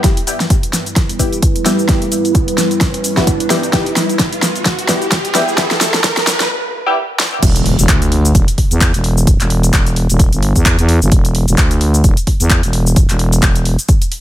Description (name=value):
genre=bass house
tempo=130 BPM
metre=4/4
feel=swing 57% on 16ths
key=E minor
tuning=A4 = 440 Hz
part: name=dark analog pad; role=sustained chords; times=0.5-14.2 s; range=G3 to B4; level=-20 LUFS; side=right 1 dB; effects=chorus, phaser, sidechain pumping
part: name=band-passed chord stab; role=stabs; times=0.0-7.0 s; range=G3 to G4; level=-19 LUFS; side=left 1 dB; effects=phaser, sidechain pumping, digital delay
part: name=big-room dance drum kit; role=drums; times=0.0-14.2 s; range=cabasa, crash cymbal, handclaps, hi-hat, snare drum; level=-17 LUFS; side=equal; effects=overdrive
part: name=electronic kick drum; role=drums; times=0.0-14.0 s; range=none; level=-13 LUFS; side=equal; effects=none
part: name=riser and impact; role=sound effects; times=1.5-9.3 s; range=none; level=-22 LUFS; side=right 1 dB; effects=none
part: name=growling FM bass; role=bass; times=7.4-13.8 s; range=E1 to E2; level=-13 LUFS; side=equal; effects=overdrive, sidechain pumping
room=digital ambience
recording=high-pass filter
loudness=-11 LUFS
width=side -13 dB against mid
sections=0.0-7.4 A section; 7.4-14.2 B section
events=build-up 0.0-7.4; drum fill 0.0-6.5, 7.2; filter sweep on synth stab 0.0-7.4; filter sweep 0.0-7.4; riser 1.5-6.5; break 6.5-7.4; drop 7.4-14.2; impact 7.4-9.3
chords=0.0 Em